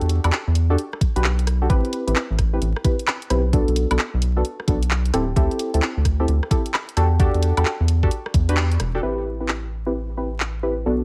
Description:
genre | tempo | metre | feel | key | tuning
UK garage, two-step garage | 131 BPM | 4/4 | swing 64% on 16ths | A dorian | A4 = 441 Hz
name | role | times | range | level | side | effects
deep mellow chord stab | stabs | 0.0-11.0 s | B3 to B4 | -27 LUFS | equal | chorus, tape echo
rubbery square bass | bass | 0.0-11.0 s | D1 to E2 | -23 LUFS | equal | none
garage drum kit | drums | 0.0-10.5 s | handclaps, hi-hat, rim click, woodblock | -28 LUFS | equal | none
electronic kick drum | drums | 1.0-8.5 s | none | -22 LUFS | equal | overdrive
room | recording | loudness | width
digital ambience | vinyl crackle | -21 LUFS | mono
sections
0.0-9.0 A section; 9.0-11.0 B section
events
filter sweep on synth stab 0.0-9.0, 9.0-11.0; band accent 8.6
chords
0.0 Em11; 1.7 Am7; 3.5 Bm7; 5.1 D7sus4; 7.0 Em11; 9.0 Am7

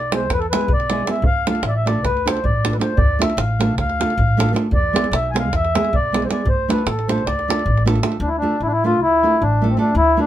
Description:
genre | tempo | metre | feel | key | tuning
balkan folk, Balkan wedding band | 310 BPM (eighths) | 9/8 | straight | D dorian sharp4 | A4 = 440 Hz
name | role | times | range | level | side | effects
mellow accordion | melody | 0.0-10.3 s | C4 to G#5 | -20 LUFS | left 1 dB | none
upright bass | bass | 0.0-10.2 s | A1 to E2 | -22 LUFS | equal | none
davul | percussion | 0.0-8.2 s | none | -22 LUFS | right 1 dB | none
nylon-string guitar | accompaniment | 0.1-10.3 s | G#3 to A4 | -22 LUFS | right 2 dB | none
room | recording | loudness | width
moderate studio reverb, RT60 0.5 s | minimal, uncompressed stereo recording | -16 LUFS | side -12 dB against mid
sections
0.0-8.2 A section; 8.2-10.3 A section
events
none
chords
0.0 E; 1.2 Dm; 4.7 E; 6.5 Dm

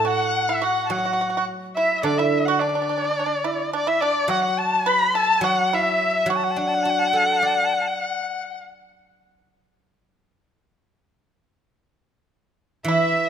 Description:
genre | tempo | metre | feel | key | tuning
chinese traditional, Chinese chamber ensemble | 106 BPM | 4/4 | rubato | unclear | A4 = 440 Hz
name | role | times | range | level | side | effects
warm erhu | melody | 0.0-8.6, 12.9-13.3 s | D5 to B5 | -22 LUFS | equal | none
bright reedy dizi | second line | 0.0-8.6, 12.9-13.3 s | D5 to B5 | -26 LUFS | left 6 dB | none
pipa | second line | 0.0-8.6, 12.9-13.3 s | D4 to B4 | -27 LUFS | right 7 dB | none
guzheng | accompaniment | 0.0-8.6, 12.8-13.3 s | A2 to D5 | -26 LUFS | right 2 dB | none
room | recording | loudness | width
light reverb | close, detailed microphones | -19 LUFS | side -8 dB against mid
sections
0.0-13.3 A section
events
none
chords
none

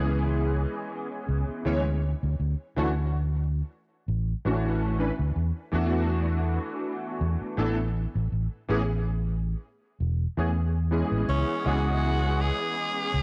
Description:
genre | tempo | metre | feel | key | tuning
vaporwave | 81 BPM | 4/4 | swing 55% on 16ths | D lydian | A4 = 440 Hz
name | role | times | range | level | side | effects
warm electric grand piano | accompaniment | 0.0-13.2 s | E3 to C#5 | -32 LUFS | equal | ensemble chorus, tape echo
fingered electric bass | bass | 0.0-13.2 s | E1 to E2 | -28 LUFS | equal | tube saturation
raspy tenor saxophone | melody | 11.3-13.2 s | C#4 to G#4 | -31 LUFS | equal | none
room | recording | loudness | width
moderate recital hall reverb, RT60 1.4 s, small room ambience | worn, warbling old tape, cassette tape, warbly pitch drift | -28 LUFS | mono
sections
0.0-13.2 A section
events
none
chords
0.0 C#m7; 2.0 Dmaj9; 5.4 E9sus4; 8.0 Amaj9; 11.3 C#m7

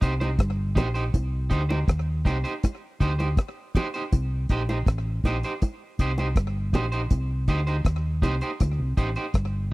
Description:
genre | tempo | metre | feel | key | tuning
roots reggae | 80 BPM | 4/4 | straight | C dorian | A4 = 438 Hz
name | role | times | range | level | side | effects
electric guitar at the edge of break-up | accompaniment | 0.0-9.3 s | Eb4 to C5 | -31 LUFS | right 3 dB | tape echo
hollow-body short-scale fingered electric bass | bass | 0.0-9.7 s | G1 to Eb2 | -26 LUFS | equal | none
deep reggae drum kit | drums | 0.0-9.5 s | hi-hat, kick drum, rim click | -22 LUFS | equal | none
bongos | percussion | 0.2-8.8 s | none | -30 LUFS | right 1 dB | none
room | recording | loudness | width
studio ambience | dry, close 1970s-style studio recording | -23 LUFS | side -21 dB against mid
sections
0.0-9.7 A section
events
none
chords
0.0 Cm

